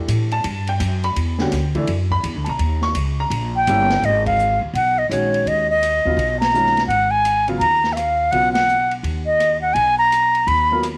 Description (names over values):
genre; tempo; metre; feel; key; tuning
modal jazz; 168 BPM; 4/4; swing 64% on 8ths; E dorian, G# dorian from 4.0 s; A4 = 440 Hz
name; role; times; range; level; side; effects
warm baby grand piano; accompaniment; 0.0-8.5, 10.7-10.8 s; C#3 to C#6; -27 LUFS; equal; none
upright bass; bass; 0.0-11.0 s; G1 to A2; -25 LUFS; equal; none
open jazz drum kit; drums; 0.1-10.9 s; hi-hat, kick drum, ride cymbal, rim click, snare drum; -33 LUFS; equal; none
mellow concert flute; melody; 3.6-10.8 s; C#5 to B5; -18 LUFS; equal; none
room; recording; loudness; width
light reverb, small room ambience; none; -18 LUFS; mono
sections
0.0-4.0 A section; 4.0-11.0 B section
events
band accent 4.2, 6.4, 8.5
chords
0.0 Em11; 2.6 D#7b9; 4.0 G#m7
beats
0.09 0.45 0.81 | 1.17 1.52 1.88 2.24 | 2.60 2.95 3.31 3.67 | 4.03 4.38 4.74 5.10 | 5.46 5.82 6.18 6.53 | 6.89 7.25 7.61 7.97 | 8.32 8.68 9.04 9.40 | 9.76 10.11 10.47 10.83